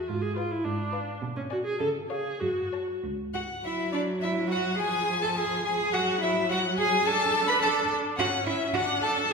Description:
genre	quick classical-period movement for string quartet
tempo	106 BPM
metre	2/4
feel	rubato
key	unclear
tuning	A4 = 441 Hz
part	dark viola	accompaniment	0.0-9.3 s	F3 to A4	-31 LUFS	right 1 dB	none
part	warm cello	bass	0.1-9.3 s	C#2 to B4	-29 LUFS	right 4 dB	none
part	warm violin	melody	0.4-9.3 s	D5 to B5	-32 LUFS	left 6 dB	none
part	warm violin	second line	0.4-9.1 s	B4 to B5	-31 LUFS	left 4 dB	none
room	wet recital hall reverb, RT60 1.6 s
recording	recorded in a church or concert hall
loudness	-25 LUFS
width	side -4 dB against mid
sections	0.0-3.6 A section; 3.6-9.3 B section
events	none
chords	0.1 G#dim7; 1.2 G#dim/B; 1.8 C#; 2.4 F#5; 3.6 Dadd9/F# (rootless); 4.8 Fm; 5.9 Eadd9/F#; 7.1 D5; 8.2 C#madd11; 8.7 D

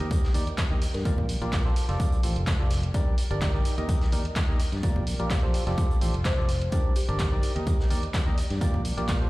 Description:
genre	piano house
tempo	127 BPM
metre	4/4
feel	swing 54% on 16ths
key	Bb major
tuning	A4 = 440 Hz
part	percussive organ stab	riff	0.0-9.3 s	Eb3 to Eb5	-33 LUFS	right 1 dB	chorus, sidechain pumping, dub echo
part	fingered electric bass	bass	0.0-9.3 s	F1 to G2	-29 LUFS	equal	sidechain pumping
part	punchy analog drum machine	drums	0.0-9.2 s	handclaps, hi-hat	-36 LUFS	right 1 dB	none
part	rich studio string section	texture	0.0-9.3 s	D4 to G5	-46 LUFS	right 1 dB	none
part	electronic kick drum	drums	0.1-9.2 s	none	-25 LUFS	equal	none
part	raw garage drum kit	drums	0.1-9.2 s	hi-hat, snare drum	-42 LUFS	equal	high-pass filter on hats, high-pass filter on snare, high-pass filter on room
part	kalimba	melody	0.9-1.1, 6.3-7.5 s	G4 to C5	-38 LUFS	left 1 dB	dub echo
room	small room ambience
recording	played on a big sound system in a bare room, large studio reverb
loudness	-23 LUFS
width	side -19 dB against mid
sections	0.0-9.3 A section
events	none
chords	0.0 Ebmaj7; 1.1 Bb6; 1.8 Fadd9; 2.9 Gm; 3.7 Ebmaj7; 4.8 Bb6; 5.5 Fadd9; 6.7 Gm; 7.4 Ebmaj7; 8.6 Bb6

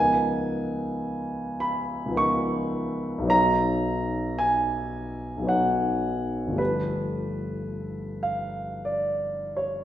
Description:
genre	classical, impressionist solo piano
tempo	54 BPM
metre	3/4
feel	rubato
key	unclear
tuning	A4 = 439 Hz
part	warm concert grand piano	solo	0.0-9.8 s	G1 to C#6	-24 LUFS	equal	none
room	wet recital hall reverb, RT60 1.5 s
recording	heard from further back in the room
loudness	-24 LUFS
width	side -12 dB against mid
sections	0.0-9.8 A section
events	none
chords	0.0 C#13; 3.3 Bmaj9; 6.6 G9

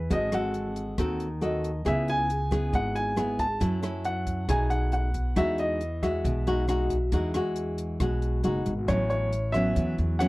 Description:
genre	bossa nova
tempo	137 BPM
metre	4/4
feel	straight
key	E major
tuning	A4 = 439 Hz
part	warm grand piano	melody	0.0-10.3 s	B4 to A5	-30 LUFS	equal	none
part	nylon-string guitar	accompaniment	0.0-10.3 s	G#2 to A4	-28 LUFS	equal	none
part	upright bass	bass	0.0-10.3 s	F#1 to F#2	-30 LUFS	equal	none
part	compact cocktail drum kit	drums	0.1-10.3 s	hi-hat, kick drum, rim click	-34 LUFS	equal	none
room	little or no reverb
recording	dry, close 1970s-style studio recording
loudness	-25 LUFS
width	side -20 dB against mid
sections	0.0-8.9 A section; 8.9-10.3 B section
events	none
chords	0.1 G#7b9; 1.9 C#m7; 3.6 F#m7; 4.5 B6; 5.4 Emaj9; 8.9 A69

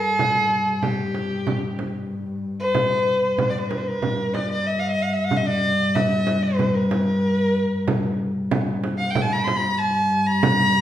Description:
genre	Arabic maqam ensemble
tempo	94 BPM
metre	4/4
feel	straight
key	G maqam huzam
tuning	A4 = 440 Hz
part	warm violin	melody	0.0-10.8 s	G4 to C6-37c	-22 LUFS	equal	none
part	warm double bass	drone	0.0-10.8 s	G2	-24 LUFS	left 1 dB	none
part	frame drum	percussion	0.2-10.6 s	none	-25 LUFS	right 2 dB	none
room	wet recital hall reverb, RT60 1.4 s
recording	heard from further back in the room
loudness	-19 LUFS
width	side -11 dB against mid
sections	0.0-10.8 A section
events	none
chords	none

